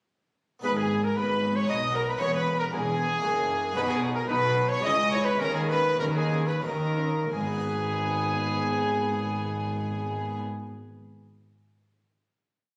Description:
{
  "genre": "classical, baroque-style concerto movement with solo episodes",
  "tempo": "85-117 BPM",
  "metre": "3/4",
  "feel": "straight",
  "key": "G# minor",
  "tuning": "A4 = 441 Hz",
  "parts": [
    { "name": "clear trumpet", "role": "melody", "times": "0.6-10.4 s", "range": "G#4 to D#5", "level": "-32 LUFS", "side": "equal", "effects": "none" },
    { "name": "rich chamber violin section", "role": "melody", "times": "0.6-10.4 s", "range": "G#5 to D#6", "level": "-38 LUFS", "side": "equal", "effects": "none" },
    { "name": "warm chamber violin section", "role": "second line", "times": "0.6-10.4 s", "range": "G#4 to D#5", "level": "-34 LUFS", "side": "equal", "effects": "none" },
    { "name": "dark chamber viola section", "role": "accompaniment", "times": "0.6-10.4 s", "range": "A#3 to E4", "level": "-40 LUFS", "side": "equal", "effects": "none" },
    { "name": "harpsichord", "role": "accompaniment", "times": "0.6-10.7 s", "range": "E2 to B4", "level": "-38 LUFS", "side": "equal", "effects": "none" },
    { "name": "dark chamber cello section", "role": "bass", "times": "0.6-10.4 s", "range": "E2 to D#3", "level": "-36 LUFS", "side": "equal", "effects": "none" },
    { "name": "rich chamber double bass section", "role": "bass", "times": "0.6-10.4 s", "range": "E1 to D#2", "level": "-35 LUFS", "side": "equal", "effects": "none" }
  ],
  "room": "wet recital hall reverb, RT60 1.6 s",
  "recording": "recorded on a phone in the room, club reverb",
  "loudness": "-27 LUFS",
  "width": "mono",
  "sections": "0.6-7.3 ritornello; 7.3-11.5 final chord",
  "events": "slowing down 3.0-7.3",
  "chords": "0.6 G#m; 1.7 B; 2.2 E; 3.2 F#; 3.8 B; 4.8 C#m; 5.4 D#7sus4; 6.6 D#5; 7.3 G#m"
}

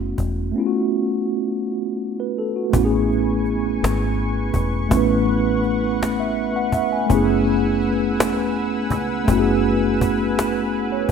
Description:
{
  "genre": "slow six-eight R&B",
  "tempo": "55 BPM (dotted quarters)",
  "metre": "6/8",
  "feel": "straight",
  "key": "unclear",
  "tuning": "A4 = 437 Hz",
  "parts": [
    { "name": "mellow tine electric piano", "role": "accompaniment", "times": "0.0-11.1 s", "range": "A3 to G#5", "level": "-20 LUFS", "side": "equal", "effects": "slow stereo tremolo" },
    { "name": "deep dub fingered electric bass", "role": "bass", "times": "0.0-11.1 s", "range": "E1 to C#2", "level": "-25 LUFS", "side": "left 1 dB", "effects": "none" },
    { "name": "cajon", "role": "drums", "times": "0.2-11.1 s", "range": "none", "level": "-23 LUFS", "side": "left 1 dB", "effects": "none" },
    { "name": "lush unison pad", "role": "sustained chords", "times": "2.7-11.1 s", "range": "B4 to E6", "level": "-28 LUFS", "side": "equal", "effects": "chorus" }
  ],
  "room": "moderate lush hall reverb, RT60 1.8 s, digital ambience",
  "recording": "rough home demo mix",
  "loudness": "-18 LUFS",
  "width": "side -6 dB against mid",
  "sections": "0.0-2.7 A section; 2.7-11.1 B section",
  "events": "none",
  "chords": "0.0 A69; 2.7 F#m11"
}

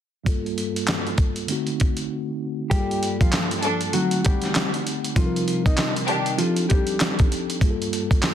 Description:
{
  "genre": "hip hop, boom-bap hip-hop",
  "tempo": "98 BPM",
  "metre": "4/4",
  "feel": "swing 60% on 16ths",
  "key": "G minor",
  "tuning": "A4 = 440 Hz",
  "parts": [
    { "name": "mellow tine electric piano", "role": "accompaniment", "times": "0.2-8.3 s", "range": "G2 to F#5", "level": "-27 LUFS", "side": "right 1 dB", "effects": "medium stereo tremolo, cassette tape, high-pass filter, low-pass filter" },
    { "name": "dusty soul sampler-style drum kit", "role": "drums", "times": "0.3-8.3 s", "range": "handclaps, hi-hat, kick drum, snare drum", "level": "-22 LUFS", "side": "equal", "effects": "none" },
    { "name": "mellow electric guitar", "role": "melody", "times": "2.7-7.2 s", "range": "F3 to Eb5", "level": "-26 LUFS", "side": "left 2 dB", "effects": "spring reverb, high-pass filter, low-pass filter, ping-pong delay" },
    { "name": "clear studio string section", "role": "stabs", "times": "3.6-6.3 s", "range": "Eb3 to A4", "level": "-27 LUFS", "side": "left 1 dB", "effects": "high-pass filter, low-pass filter, ping-pong delay" }
  ],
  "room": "light reverb",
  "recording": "dense, heavily limited modern master",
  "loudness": "-20 LUFS",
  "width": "side -10 dB against mid",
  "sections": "0.3-2.7 A section; 2.7-8.3 B section",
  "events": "filter sweep on tine electric piano 0.3-2.7; break 2.1-2.7",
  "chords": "0.3 Gm9; 1.5 D7b9; 2.7 Gm9; 3.9 D7b9; 5.2 Cm9; 6.4 F13; 7.6 Gm9"
}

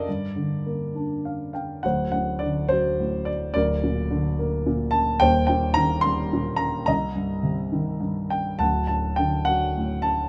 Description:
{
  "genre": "classical, lyrical solo piano",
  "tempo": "99-109 BPM",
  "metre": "3/4",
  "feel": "rubato",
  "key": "unclear",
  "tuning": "A4 = 441 Hz",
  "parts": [
    { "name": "dark grand piano", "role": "solo", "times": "0.0-10.3 s", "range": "D1 to C6", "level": "-24 LUFS", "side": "equal", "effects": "none" }
  ],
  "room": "light reverb",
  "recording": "none",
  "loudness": "-24 LUFS",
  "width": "mono",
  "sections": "0.0-1.8 A section; 1.8-10.3 B section",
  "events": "grand piano fill 0.9-1.8",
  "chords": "0.1 Gm; 1.8 D7; 3.6 Bbmaj7/D; 5.2 Eb6; 6.9 Cm7; 8.6 D"
}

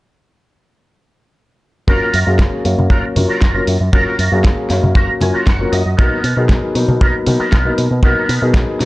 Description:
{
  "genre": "nu-disco, nu disco",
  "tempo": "117 BPM",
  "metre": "4/4",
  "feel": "straight",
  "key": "F# major",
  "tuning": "A4 = 442 Hz",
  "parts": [
    { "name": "warm concert grand piano", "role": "accompaniment", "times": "1.9-8.9 s", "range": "F#3 to E#5", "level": "-19 LUFS", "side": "left 2 dB", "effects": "sidechain pumping, low-pass filter, tape echo" },
    { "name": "electric guitar with an envelope filter", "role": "riff", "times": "1.9-8.5 s", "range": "B3 to G#5", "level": "-20 LUFS", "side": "right 2 dB", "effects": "ensemble chorus, tape echo" },
    { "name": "picked electric bass with an envelope filter", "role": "bass", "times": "1.9-8.9 s", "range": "F#1 to B2", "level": "-17 LUFS", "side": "equal", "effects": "tube saturation" },
    { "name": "kick drum", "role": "drums", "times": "1.9-8.7 s", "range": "none", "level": "-14 LUFS", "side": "equal", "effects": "studio reverb" },
    { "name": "pop drum kit", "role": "drums", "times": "2.1-8.9 s", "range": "hi-hat, snare drum", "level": "-24 LUFS", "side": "equal", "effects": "studio reverb" },
    { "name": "congas", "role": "percussion", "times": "2.8-7.4 s", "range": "none", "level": "-19 LUFS", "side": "left 1 dB", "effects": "none" }
  ],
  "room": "small room ambience",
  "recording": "dry, gritty hardware recording, cassette tape, nothing above 10.7 kHz",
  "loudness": "-12 LUFS",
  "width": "side -19 dB against mid",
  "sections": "1.9-8.9 A section",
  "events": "filter sweep on grand piano 1.9-8.9; clean electric guitar fill 5.0-6.0",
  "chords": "1.9 F#maj7; 6.0 Bmaj7"
}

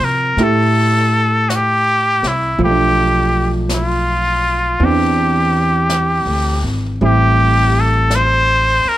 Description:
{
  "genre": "jazz ballad",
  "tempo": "54 BPM",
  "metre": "4/4",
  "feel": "swing 67% on 8ths",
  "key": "F major",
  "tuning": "A4 = 440 Hz",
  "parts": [
    { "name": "trumpet with straight mute", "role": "melody", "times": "0.0-9.0 s", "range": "E4 to C5", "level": "-15 LUFS", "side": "equal", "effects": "none" },
    { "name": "hollow-body jazz guitar", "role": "accompaniment", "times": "0.0-9.0 s", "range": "E3 to G4", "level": "-20 LUFS", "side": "right 4 dB", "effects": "none" },
    { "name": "upright bass", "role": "bass", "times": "0.0-8.9 s", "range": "G#1 to C3", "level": "-17 LUFS", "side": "left 1 dB", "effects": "none" },
    { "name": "jazz brush drum kit", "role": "drums", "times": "0.4-9.0 s", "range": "brushed snare drum, hi-hat, snare drum", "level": "-28 LUFS", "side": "left 1 dB", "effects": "none" }
  ],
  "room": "light reverb",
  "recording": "none",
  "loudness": "-12 LUFS",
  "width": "side -14 dB against mid",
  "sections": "0.0-9.0 A section",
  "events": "none",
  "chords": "0.0 Fmaj9; 2.6 Bm7b5; 4.8 E7alt; 7.0 Am7"
}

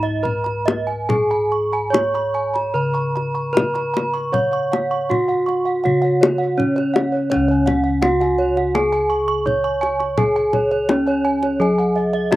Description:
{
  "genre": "Javanese gamelan",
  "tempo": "71-84 BPM",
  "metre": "4/4",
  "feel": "straight",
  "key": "Db slendro",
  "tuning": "A4 = 440 Hz",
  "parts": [
    { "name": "gamelan-type bronze metallophone", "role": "melody", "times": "0.0-12.4 s", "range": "Db4 to Db5", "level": "-19 LUFS", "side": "equal", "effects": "none" },
    { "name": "gamelan-type bronze metallophone", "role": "arpeggios", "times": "0.0-12.4 s", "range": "Db5 to Db6", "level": "-24 LUFS", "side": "right 4 dB", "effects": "slapback echo" },
    { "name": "gamelan-type bossed gongs", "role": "bass", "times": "0.0-12.4 s", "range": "Db2 to Db5", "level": "-25 LUFS", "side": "left 1 dB", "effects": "none" },
    { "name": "kendang", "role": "percussion", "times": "0.3-12.4 s", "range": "none", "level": "-20 LUFS", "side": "left 3 dB", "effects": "none" },
    { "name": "gamelan-type bossed gongs", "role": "arpeggios", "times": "1.1-12.4 s", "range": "Db5 to Db6", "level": "-28 LUFS", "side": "left 1 dB", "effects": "slapback echo" }
  ],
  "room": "little or no reverb",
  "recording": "recorded outdoors, with no room sound",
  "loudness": "-16 LUFS",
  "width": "side -16 dB against mid",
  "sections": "0.0-7.3 A section; 7.3-12.4 B section",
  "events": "none",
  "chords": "none"
}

